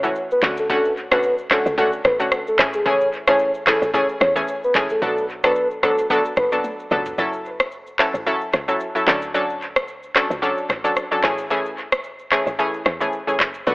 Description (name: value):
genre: afrobeats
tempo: 111 BPM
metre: 4/4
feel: swing 55% on 16ths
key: A major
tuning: A4 = 439 Hz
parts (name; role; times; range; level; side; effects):
- analog pluck; accompaniment; 0.0-13.7 s; D3 to A4; -21 LUFS; equal; chorus
- woody log drum bass; bass; 0.0-13.7 s; F#1 to E2; -25 LUFS; equal; none
- afro-pop drum kit; drums; 0.0-13.7 s; handclaps, kick drum, rim click, shaker, toms; -21 LUFS; equal; dub echo
- soft octave-layered synth lead; melody; 0.3-6.5 s; G#4 to C#5; -21 LUFS; equal; chorus, tremolo, dub echo
room: moderate plate reverb, RT60 1.9 s, digital ambience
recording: echo-heavy mix, telephone sound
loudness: -17 LUFS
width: side -24 dB against mid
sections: 0.0-7.2 A section; 7.2-13.7 B section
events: drum fill 6.6-7.2; break 7.2-13.7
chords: 0.4 Dmaj7; 2.6 Amaj7; 5.0 Bm7; 7.2 F#m7; 9.1 Dmaj7; 11.2 Amaj7